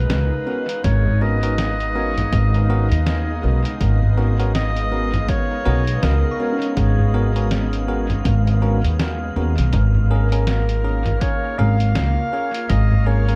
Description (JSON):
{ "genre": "ambient dub", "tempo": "81 BPM", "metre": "4/4", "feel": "swing 59% on 16ths", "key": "G# dorian", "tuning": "A4 = 442 Hz", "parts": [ { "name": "warm clarinet", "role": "melody", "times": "0.0-13.4 s", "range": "G#4 to E#5", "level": "-29 LUFS", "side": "equal", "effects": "dub echo" }, { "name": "soft additive organ-like pad", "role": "sustained chords", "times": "0.0-13.4 s", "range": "G#3 to A#5", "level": "-32 LUFS", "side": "equal", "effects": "ensemble chorus, built-in reverb" }, { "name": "soft synth bell", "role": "arpeggios", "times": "0.0-9.8 s", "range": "C#4 to D#6", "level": "-36 LUFS", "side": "equal", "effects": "chorus, dub echo" }, { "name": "upright bass", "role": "bass", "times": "0.0-13.4 s", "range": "G#1 to D#2", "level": "-20 LUFS", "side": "equal", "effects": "none" }, { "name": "drifting glass-harmonics texture", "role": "texture", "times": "0.0-13.4 s", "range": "E#5", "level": "-36 LUFS", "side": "equal", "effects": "chorus, built-in reverb" }, { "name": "lo-fi sampler-style drum kit", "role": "drums", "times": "0.1-13.4 s", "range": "congas, hi-hat, snare drum", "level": "-29 LUFS", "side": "equal", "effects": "dub echo" }, { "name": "bell-like tine electric piano", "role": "stabs", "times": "0.5-13.4 s", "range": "B3 to A#4", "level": "-31 LUFS", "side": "equal", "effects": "vintage 12-bit sampler grit, dub echo" }, { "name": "electronic kick drum", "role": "drums", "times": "0.8-12.9 s", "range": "none", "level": "-25 LUFS", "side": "equal", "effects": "none" } ], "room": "digital ambience", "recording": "echo-heavy mix", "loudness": "-19 LUFS", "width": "mono", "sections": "0.0-13.4 A section", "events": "none", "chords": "0.0 G#m11; 9.7 A#m7/G#" }